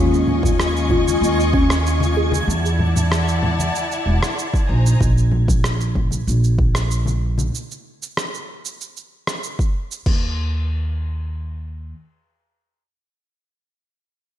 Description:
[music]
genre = sunset chillout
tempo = 95 BPM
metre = 4/4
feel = straight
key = unclear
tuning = A4 = 440 Hz
[part]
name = mellow FM electric piano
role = accompaniment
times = 0.0-2.5 s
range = Eb3 to F4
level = -23 LUFS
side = left 3 dB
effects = chorus, auto-pan, low-pass filter, tape echo
[part]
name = clear symphonic string section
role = sustained chords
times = 0.0-5.0 s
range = Eb4 to Db6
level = -25 LUFS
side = left 2 dB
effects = none
[part]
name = soft round pluck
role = arpeggios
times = 0.0-2.5 s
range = Db4 to Ab4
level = -23 LUFS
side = equal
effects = wide subtle chorus, tape echo
[part]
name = upright bass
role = bass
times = 0.0-11.9 s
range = E1 to E2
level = -19 LUFS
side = right 1 dB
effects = none
[part]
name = twinkling granular texture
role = texture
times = 0.2-5.0 s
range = Ab6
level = -32 LUFS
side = right 2 dB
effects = built-in reverb, analog chorus
[part]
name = dusty soul sampler-style drum kit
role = drums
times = 0.1-10.2 s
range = crash cymbal, rim click, shaker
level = -27 LUFS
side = right 1 dB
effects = none
[part]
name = congas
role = percussion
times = 0.3-7.5 s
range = none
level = -27 LUFS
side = left 2 dB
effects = none
[part]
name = electronic kick drum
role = drums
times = 0.4-10.2 s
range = none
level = -20 LUFS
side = equal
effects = overdrive
[sound]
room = moderate lush hall reverb, RT60 1.7 s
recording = dreamy mix soaked in reverb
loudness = -17 LUFS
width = side -11 dB against mid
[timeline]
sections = 0.0-10.1 A section; 10.1-12.6 B section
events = filter sweep on FM electric piano 0.0-2.5; filter sweep on synth arpeggio sound 0.0-2.5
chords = 0.0 Eb9sus4; 2.5 E9sus4; 4.7 Bb7(no3); 7.5 N.C.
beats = 0.58 1.22 1.85 | 2.48 3.11 3.74 4.37 | 5.00 5.64 6.27 6.90 | 7.53 8.16 8.79 9.43 | 10.06 10.69 11.32

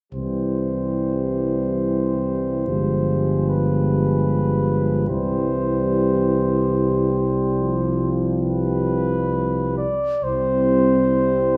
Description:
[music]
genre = classical, hymn-like piece for brass band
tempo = 61-76 BPM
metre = 3/4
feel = rubato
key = C major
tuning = A4 = 439 Hz
[part]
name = dark cornet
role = melody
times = 0.1-11.6 s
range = B4 to D5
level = -27 LUFS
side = equal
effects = none
[part]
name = mellow French horn section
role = second line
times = 0.1-11.6 s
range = E4 to G4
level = -32 LUFS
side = equal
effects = none
[part]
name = dark trombone section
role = accompaniment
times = 0.1-11.6 s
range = G3 to C4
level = -29 LUFS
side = equal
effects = none
[part]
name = mellow euphonium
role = accompaniment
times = 0.1-11.6 s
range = E3 to G3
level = -29 LUFS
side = equal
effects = none
[part]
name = dark tuba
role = bass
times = 0.1-11.6 s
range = G1 to C2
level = -24 LUFS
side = equal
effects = none
[sound]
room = wet recital hall reverb, RT60 1.4 s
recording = recorded in a church or concert hall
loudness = -21 LUFS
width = mono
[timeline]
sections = 0.1-10.2 A section; 10.2-11.6 B section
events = none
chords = 0.1 C; 2.7 G7b9; 5.1 C; 7.6 G7/C; 10.2 C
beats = | 0.14 1.01 1.85 | 2.69 3.50 4.30 | 5.09 5.91 6.72 | 7.56 8.41 9.31 | 10.25 11.13

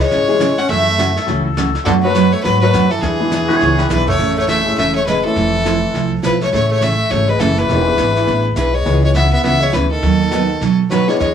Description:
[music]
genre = country, western swing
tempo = 206 BPM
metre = 4/4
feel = swing 61% on 8ths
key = A major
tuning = A4 = 441 Hz
[part]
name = clear fiddle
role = melody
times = 0.0-11.3 s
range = G#4 to F#5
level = -18 LUFS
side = left 3 dB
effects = none
[part]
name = growling tenor saxophone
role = second line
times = 0.0-11.3 s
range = D3 to C#4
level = -20 LUFS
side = right 1 dB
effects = none
[part]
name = vintage brush drum kit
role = drums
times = 0.0-11.3 s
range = brushed snare drum, crash cymbal, hi-hat, kick drum, snare drum, toms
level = -27 LUFS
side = left 1 dB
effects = none
[part]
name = picked steel-string acoustic guitar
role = accompaniment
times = 0.1-11.3 s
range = B2 to A4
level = -20 LUFS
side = right 6 dB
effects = none
[part]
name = upright bass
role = bass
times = 0.1-11.3 s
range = E1 to B2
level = -19 LUFS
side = equal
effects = none
[part]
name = warm upright piano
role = accompaniment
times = 0.3-11.2 s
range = E3 to B4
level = -22 LUFS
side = left 4 dB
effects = none
[part]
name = pedal steel guitar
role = second line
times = 1.2-4.1 s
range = G4 to D5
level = -20 LUFS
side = left 2 dB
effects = none
[sound]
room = moderate club reverb, RT60 0.5 s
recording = none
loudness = -12 LUFS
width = side -8 dB against mid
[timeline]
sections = 0.0-4.2 A section; 4.2-11.3 B section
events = drum fill 3.6-4.2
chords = 0.0 C#m; 0.7 F#m7; 1.9 Bm7/F#; 3.0 E7; 4.2 Amaj7; 5.4 Fmaj7; 6.5 Amaj7; 7.7 E7; 8.9 C#m7; 10.0 B7/D#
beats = 0.11 0.40 | 0.69 0.98 1.27 1.56 | 1.86 2.15 2.44 2.73 | 3.02 3.31 3.60 3.90 | 4.19 4.48 4.77 5.07 | 5.36 5.65 5.94 6.23 | 6.53 6.82 7.11 7.40 | 7.69 7.99 8.28 8.57 | 8.86 9.15 9.45 9.74 | 10.03 10.32 10.61 10.90 | 11.20

